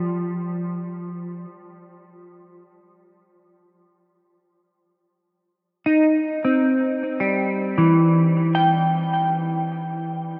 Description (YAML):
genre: ambient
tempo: free time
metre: none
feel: none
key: unclear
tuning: A4 = 439 Hz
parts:
  - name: semi-hollow electric guitar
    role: solo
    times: 0.0-10.4 s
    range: E3 to G5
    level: -21 LUFS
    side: equal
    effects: analog chorus, tape echo
room: wet huge ambient reverb, RT60 7.9 s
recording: dreamy mix soaked in reverb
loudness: -21 LUFS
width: mono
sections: 0.0-10.4 A section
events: none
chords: 0.0 N.C.; 6.3 C; 9.4 N.C.